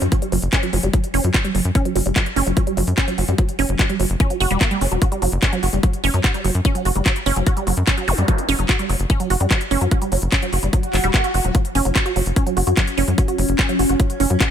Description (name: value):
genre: psychedelic trance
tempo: 147 BPM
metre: 4/4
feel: straight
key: unclear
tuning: A4 = 440 Hz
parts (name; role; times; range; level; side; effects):
- wide unison pluck; riff; 0.0-14.4 s; F#3 to F#4; -22 LUFS; right 2 dB; auto-pan, sidechain pumping, tape echo
- tight sequencer bass; bass; 0.0-14.4 s; E1 to F#2; -20 LUFS; equal; none
- drum and bass drum kit; drums; 0.0-14.5 s; handclaps, hi-hat; -24 LUFS; left 1 dB; none
- electronic kick drum; drums; 0.1-14.5 s; none; -18 LUFS; equal; none
- zap and swell; sound effects; 8.1-8.2, 10.8-11.5 s; none; -26 LUFS; right 1 dB; none
- evolving wavetable pad; sustained chords; 12.5-14.5 s; F#3 to C#4; -24 LUFS; left 1 dB; chorus, built-in reverb, phaser, sidechain pumping
room: digital ambience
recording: none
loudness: -16 LUFS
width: side -9 dB against mid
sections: 0.0-14.5 A section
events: swell 10.8-11.5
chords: 0.0 F#5